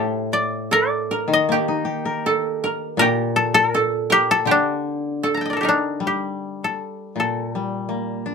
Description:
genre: japanese traditional, Japanese chamber music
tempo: 79 BPM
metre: 2/4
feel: uneven beats, rubato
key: unclear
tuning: A4 = 440 Hz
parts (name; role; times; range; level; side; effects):
- koto; melody; 0.0-8.3 s; D4 to Bb5; -19 LUFS; left 2 dB; none
- koto; second line; 0.0-7.5 s; G4 to Bb4; -23 LUFS; right 5 dB; none
- koto; accompaniment; 0.0-8.3 s; A2 to Bb4; -25 LUFS; left 3 dB; none
room: moderate small room reverb, RT60 0.5 s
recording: minimal, uncompressed stereo recording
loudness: -18 LUFS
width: side -5 dB against mid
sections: 0.0-6.0 A section; 6.0-8.3 B section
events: none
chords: none

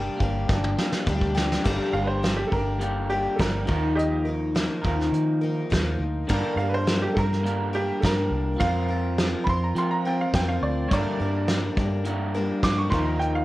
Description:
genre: folk rock and heartland rock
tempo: 104 BPM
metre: 4/4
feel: straight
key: G minor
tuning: A4 = 440 Hz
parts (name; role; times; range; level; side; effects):
- picked twelve-string acoustic guitar; accompaniment; 0.0-13.4 s; G2 to Bb4; -30 LUFS; left 3 dB; none
- electric guitar through a small old amp; riff; 0.0-13.4 s; G2 to Bb4; -29 LUFS; equal; none
- vintage muted fingered electric bass; bass; 0.0-13.4 s; G1 to F3; -27 LUFS; equal; none
- soft brush drum kit; drums; 0.2-13.3 s; crash cymbal, hi-hat, kick drum, snare drum, toms; -26 LUFS; equal; none
- bright upright piano; second line; 1.9-13.4 s; G4 to D6; -29 LUFS; right 2 dB; none
room: light reverb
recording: worn, warbling old tape, cassette tape, warbly pitch drift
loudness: -22 LUFS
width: side -17 dB against mid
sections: 0.0-1.6 A section; 1.6-13.4 B section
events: drum fill 0.0-1.6; upright piano solo 1.6-13.4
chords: 0.0 Gm; 3.7 Ebsus2; 6.3 Gm; 8.6 Fsus4; 10.9 Gm; 12.9 Ebsus2

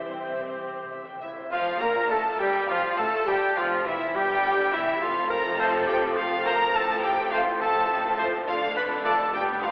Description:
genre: quick classical-period movement for symphony orchestra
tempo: 69 BPM (dotted quarters)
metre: 6/8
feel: straight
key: F major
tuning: A4 = 440 Hz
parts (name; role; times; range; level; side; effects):
- rich chamber violin section; melody; 0.0-9.7 s; C5 to B5; -29 LUFS; equal; none
- dark chamber violin section; second line; 0.0-9.7 s; C4 to G5; -31 LUFS; equal; none
- mellow cor anglais; second line; 0.0-1.2 s; C5; -38 LUFS; equal; none
- mellow hollow large flute ensemble; second line; 0.0-9.7 s; E5 to B5; -31 LUFS; equal; none
- warm clarinet; second line; 0.0-9.7 s; E4 to B4; -30 LUFS; equal; none
- rich studio viola section; accompaniment; 0.0-9.7 s; D3 to C4; -31 LUFS; equal; none
- dark French horn section; sustained chords; 0.0-9.1 s; E3 to F4; -34 LUFS; equal; none
- rich chamber cello section; bass; 0.0-9.7 s; E2 to E3; -39 LUFS; equal; none
- rich chamber double bass section; bass; 0.0-9.7 s; E1 to C2; -41 LUFS; equal; none
- timpani; percussion; 0.0-1.5 s; C3; -50 LUFS; equal; none
- warm trumpet; stabs; 1.5-9.1 s; E4 to D5; -30 LUFS; equal; none
room: wet scoring stage reverb, RT60 1.9 s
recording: heard from further back in the room, telephone sound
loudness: -22 LUFS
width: side -30 dB against mid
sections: 0.0-1.5 A section; 1.5-9.7 B section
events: timpani fill 0.0-1.5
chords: 0.0 C; 1.5 F; 3.3 Em; 5.0 F; 6.7 F/A; 8.5 Dm/F

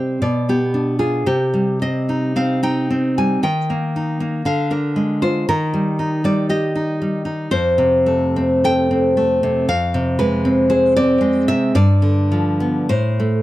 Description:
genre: romantic piece for solo classical guitar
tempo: 48-60 BPM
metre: 2/4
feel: rubato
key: unclear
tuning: A4 = 440 Hz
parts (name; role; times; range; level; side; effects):
- nylon-string guitar; solo; 0.0-13.4 s; F2 to Ab5; -15 LUFS; equal; none
room: small room ambience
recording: dry, close 1970s-style studio recording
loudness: -15 LUFS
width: side -16 dB against mid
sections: 0.0-13.4 A section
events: none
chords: 0.2 G7/B; 1.3 Cm; 3.4 Eb; 4.4 Bb7/D; 5.5 Eb; 7.5 F; 9.7 Fm6; 11.7 G7; 12.9 Am

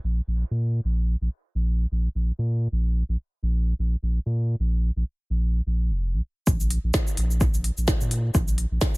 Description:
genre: minimal techno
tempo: 128 BPM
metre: 4/4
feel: swing 56% on 16ths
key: unclear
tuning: A4 = 437 Hz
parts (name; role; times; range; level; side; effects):
- saturated sub bass; bass; 0.0-8.8 s; F1 to Bb2; -23 LUFS; equal; sidechain pumping
- electronic kick drum; drums; 6.5-8.9 s; none; -23 LUFS; equal; overdrive
- minimal click drum kit; drums; 6.5-9.0 s; cabasa, hi-hat, snare drum; -28 LUFS; equal; overdrive, dub echo
room: digital ambience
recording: echo-heavy mix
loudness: -22 LUFS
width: side -24 dB against mid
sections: 0.0-6.5 A section; 6.5-9.0 B section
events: drop 6.5-9.0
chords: none

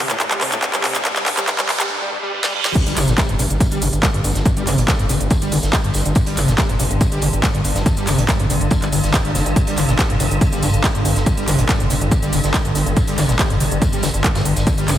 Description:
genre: driving peak-time techno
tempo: 141 BPM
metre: 4/4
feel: straight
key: unclear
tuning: A4 = 445 Hz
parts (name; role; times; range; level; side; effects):
- screaming distorted acid line; riff; 0.0-15.0 s; G1 to G3; -23 LUFS; equal; distortion, ensemble chorus, sidechain pumping, ping-pong delay
- swarming drone; drone; 0.0-15.0 s; G2 to D3; -24 LUFS; equal; built-in reverb, sidechain pumping
- riser, reverse cymbal and impact; sound effects; 0.1-4.5 s; none; -26 LUFS; right 2 dB; none
- techno drum kit; drums; 0.1-15.0 s; crash cymbal, handclaps, hi-hat, shaker, snare drum; -22 LUFS; equal; high-pass filter on snare, high-pass filter on hats, high-pass filter on perc, high-pass filter on cymbals, high-pass filter on room
- electronic kick drum; drums; 0.2-14.8 s; none; -19 LUFS; equal; high-pass filter on kick, high-pass filter on room
- raw garage drum kit; drums; 2.8-15.0 s; hi-hat, snare drum, tambourine; -30 LUFS; equal; high-pass filter on hats, high-pass filter on snare, high-pass filter on perc, high-pass filter on room
- gritty driven synth bass; bass; 2.9-15.0 s; F1 to G1; -21 LUFS; equal; sidechain pumping
room: moderate lush hall reverb, RT60 2.0 s, digital ambience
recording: heavily compressed radio sound, high-pass filter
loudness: -15 LUFS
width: side -12 dB against mid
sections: 0.0-2.8 A section; 2.8-15.0 B section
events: build-up 0.0-2.8; drum fill 0.0-1.9, 2.4-2.8; riser 0.1-1.9; reverse cymbal 1.9-2.8; drop 2.8-15.0; impact 2.8-4.5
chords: 0.0 G5

